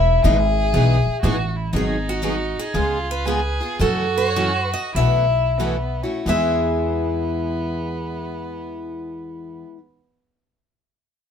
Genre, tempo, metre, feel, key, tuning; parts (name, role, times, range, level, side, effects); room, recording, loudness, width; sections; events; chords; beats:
acoustic string swing (jazz manouche); 85-121 BPM; 4/4; swing 65% on 8ths; E major; A4 = 440 Hz
picked steel-string acoustic guitar; melody; 0.0-9.7 s; F#4 to E5; -23 LUFS; left 2 dB
warm violin; second line; 0.0-9.6 s; B3 to G#4; -28 LUFS; right 3 dB
upright bass; bass; 0.0-9.6 s; E1 to F#2; -22 LUFS; equal
picked steel-string acoustic guitar; accompaniment; 0.2-9.8 s; B2 to G#4; -26 LUFS; left 3 dB
picked steel-string acoustic guitar; accompaniment; 0.2-9.8 s; B2 to B4; -29 LUFS; right 5 dB
light reverb; minimal, uncompressed stereo recording; -18 LUFS; side -8 dB against mid
0.0-1.7 A section; 1.7-6.3 B section; 6.3-11.3 C section
slowing down 1.7-6.3
0.0 Emaj7; 1.7 G#m7; 2.7 C#7; 3.8 F#m7; 5.0 B7sus4; 6.3 E
0.24 0.74 1.23 | 1.73 2.23 2.74 3.26 | 3.80 4.36 4.96 5.59 | 6.27 6.98 7.69 8.40 | 9.11